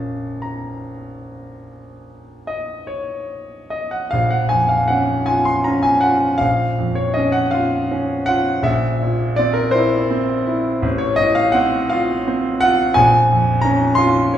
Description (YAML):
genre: classical, romantic nocturne for solo piano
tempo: 47-62 BPM (dotted quarters)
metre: 12/8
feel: rubato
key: Bb minor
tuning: A4 = 441 Hz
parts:
  - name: clear concert grand piano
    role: solo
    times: 0.0-14.4 s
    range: A1 to C6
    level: -16 LUFS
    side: equal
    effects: none
room: wet stone room reverb, RT60 1.3 s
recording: heard from further back in the room, lossy compression artefacts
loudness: -15 LUFS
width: side -10 dB against mid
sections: 0.0-4.1 A section; 4.1-14.4 A section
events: none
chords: 0.0 Bbm; 8.7 C7/Bb; 10.8 F/A; 13.0 Bbm